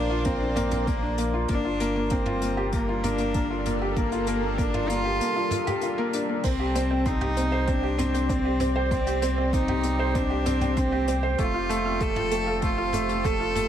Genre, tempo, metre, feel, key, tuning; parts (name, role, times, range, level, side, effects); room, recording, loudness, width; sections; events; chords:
piano and strings electronica; 97 BPM; 4/4; straight; A4 = 440 Hz
rich cello; melody; 0.0-13.7 s; Bb3 to A4; -29 LUFS; right 1 dB; ping-pong delay
lush unison pad; sustained chords; 0.0-13.7 s; F3 to D5; -33 LUFS; right 1 dB; chorus, phaser
felt-muted upright piano; riff; 0.0-13.7 s; A3 to C5; -27 LUFS; left 1 dB; ping-pong delay
warm sub bass; bass; 0.0-13.7 s; F1 to C2; -30 LUFS; equal; tube saturation, sidechain pumping
vintage brush drum kit; drums; 0.2-13.7 s; crash cymbal, hi-hat, toms; -36 LUFS; right 1 dB
electronic kick drum; drums; 0.3-13.4 s; -28 LUFS; equal
soft round pluck; arpeggios; 6.4-13.6 s; A4 to G6; -36 LUFS; right 7 dB; chorus, sidechain pumping, ping-pong delay
light reverb, small room ambience; -23 LUFS; side -10 dB against mid
0.0-13.7 A section
0.0 Bbadd9; 1.5 Gm7; 6.4 Cm; 11.4 F